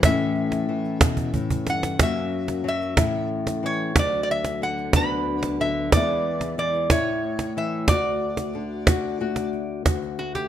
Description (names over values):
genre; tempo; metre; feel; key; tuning
acoustic folk duo or small band; 61 BPM (dotted quarters); 6/8; straight; D major; A4 = 440 Hz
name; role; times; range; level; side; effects
lap resonator guitar; melody; 0.0-10.5 s; F#4 to B5; -26 LUFS; right 1 dB; none
nylon-string guitar; accompaniment; 0.0-10.5 s; D2 to F#4; -26 LUFS; left 5 dB; none
mellow tonewheel organ; sustained chords; 0.0-9.8 s; D2 to D5; -32 LUFS; right 1 dB; slow rotary speaker
cajon; percussion; 0.0-10.5 s; none; -21 LUFS; right 2 dB; none
room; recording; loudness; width
light reverb; close, detailed microphones, faint mains hum; -21 LUFS; side -10 dB against mid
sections
0.0-9.9 A section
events
drum fill 1.2-2.0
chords
0.0 A; 2.0 F#; 3.0 A; 4.0 D; 4.9 Bm/D; 5.9 E; 6.9 A; 7.9 D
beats
| 0.04 1.02 | 2.00 2.98 | 3.96 4.94 | 5.92 6.91 | 7.89 8.87 | 9.86